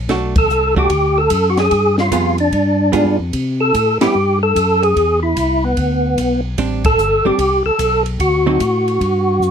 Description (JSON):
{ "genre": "soul jazz organ trio", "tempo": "148 BPM", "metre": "4/4", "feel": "swing 66% on 8ths", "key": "G major", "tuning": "A4 = 440 Hz", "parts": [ { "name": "tonewheel organ", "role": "bass", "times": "0.0-9.5 s", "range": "G1 to C3", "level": "-19 LUFS", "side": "equal", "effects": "slow rotary speaker" }, { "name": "hollow-body jazz guitar", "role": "accompaniment", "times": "0.1-4.1, 6.6-8.6 s", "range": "D3 to Ab4", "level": "-19 LUFS", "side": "right 6 dB", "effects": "none" }, { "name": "compact cocktail drum kit", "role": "drums", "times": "0.1-9.5 s", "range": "hi-hat, kick drum, ride cymbal, snare drum", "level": "-23 LUFS", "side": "left 1 dB", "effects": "none" }, { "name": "percussive tonewheel organ", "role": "melody", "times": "0.4-9.5 s", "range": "B3 to A4", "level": "-15 LUFS", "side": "equal", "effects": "slow rotary speaker, overdrive, chorus vibrato" } ], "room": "light reverb", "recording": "none", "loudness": "-13 LUFS", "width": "side -7 dB against mid", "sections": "0.0-9.5 A section", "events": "band accent 0.3, 3.9, 6.8", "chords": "0.1 Bm7; 1.7 G7b9; 3.3 C5; 5.0 E5; 6.6 Am11; 8.2 D", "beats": "| 0.09 0.50 0.90 1.31 | 1.71 2.12 2.52 2.93 | 3.33 3.74 4.14 4.55 | 4.95 5.36 5.76 6.17 | 6.57 6.98 7.38 7.79 | 8.20 8.60 9.01 9.41" }